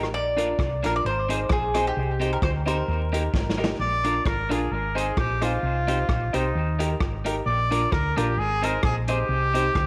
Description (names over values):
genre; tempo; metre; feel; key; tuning
ska; 131 BPM; 4/4; swing 55% on 8ths; Bb mixolydian; A4 = 440 Hz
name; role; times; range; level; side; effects
warm upright piano; stabs; 0.0-9.7 s; D4 to C5; -33 LUFS; equal; dub echo
hollow-body short-scale fingered electric bass; bass; 0.0-9.9 s; Ab1 to Eb2; -30 LUFS; equal; none
vintage drum kit; drums; 0.0-9.9 s; hi-hat, kick drum, rim click, snare drum; -30 LUFS; equal; none
mandolin; melody; 0.1-3.6 s; G4 to D5; -29 LUFS; equal; dub echo
electric guitar at the edge of break-up; accompaniment; 0.4-9.6 s; Bb3 to C5; -35 LUFS; equal; spring reverb, dub echo
clear trumpet; melody; 3.8-9.9 s; Eb4 to D5; -28 LUFS; equal; dub echo
room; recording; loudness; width
light reverb, studio reverb; vinyl crackle; -24 LUFS; mono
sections
0.0-3.8 A section; 3.8-9.9 B section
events
drum fill 3.3-3.8; trumpet solo 3.8-9.9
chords
0.1 Bb; 1.0 Ab; 2.0 Cm; 2.9 Eb; 3.8 Bb; 4.7 Ab; 5.6 Cm; 6.5 Eb; 7.5 Bb; 8.4 Ab; 9.3 Cm